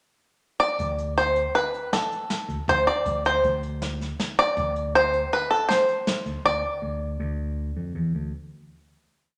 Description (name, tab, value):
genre	progressive instrumental, band music in an uneven meter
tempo	159 BPM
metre	5/4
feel	straight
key	unclear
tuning	A4 = 441 Hz
part	bluegrass banjo	melody	0.6-7.9 s	A4 to D5	-25 LUFS	equal	none
part	picked electric bass	bass	0.8-8.3 s	D2 to F2	-33 LUFS	equal	none
part	jazz brush drum kit	drums	0.8-6.3 s	hi-hat, kick drum, snare drum	-33 LUFS	equal	none
room	wet large studio reverb, RT60 1.2 s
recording	none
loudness	-25 LUFS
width	mono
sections	0.0-0.8 pickup bar; 0.8-8.3 A section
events	none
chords	0.0 N.C.; 0.8 D5; 6.5 N.C.